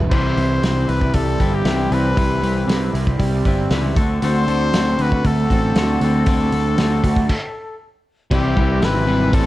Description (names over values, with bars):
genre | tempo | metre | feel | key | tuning
indie rock | 117 BPM | 4/4 | straight | unclear | A4 = 440 Hz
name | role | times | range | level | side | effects
fuzz guitar | riff | 0.0-9.5 s | A2 to B4 | -24 LUFS | right 5 dB | distortion, analog chorus, slapback echo
fuzz picked electric bass | bass | 0.0-9.5 s | E1 to D2 | -19 LUFS | equal | overdrive
bright trumpet | melody | 0.1-9.5 s | G4 to C5 | -24 LUFS | left 2 dB | slapback echo
twangy electric guitar | riff | 0.1-9.5 s | A2 to B4 | -24 LUFS | left 4 dB | none
loose indie drum kit | drums | 0.1-9.4 s | crash cymbal, hi-hat, kick drum, snare drum | -21 LUFS | equal | none
room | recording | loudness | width
light reverb | dark, warm production | -15 LUFS | side -16 dB against mid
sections
0.1-8.3 A section; 8.3-9.5 B section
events
stop 7.3-8.3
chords
0.1 Cmaj7; 4.0 D7; 8.3 Cmaj7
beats
| 0.10 0.62 1.13 1.65 | 2.16 2.68 3.19 3.70 | 4.21 4.73 5.24 5.75 | 6.26 6.77 7.29 7.79 | 8.31 8.82 9.33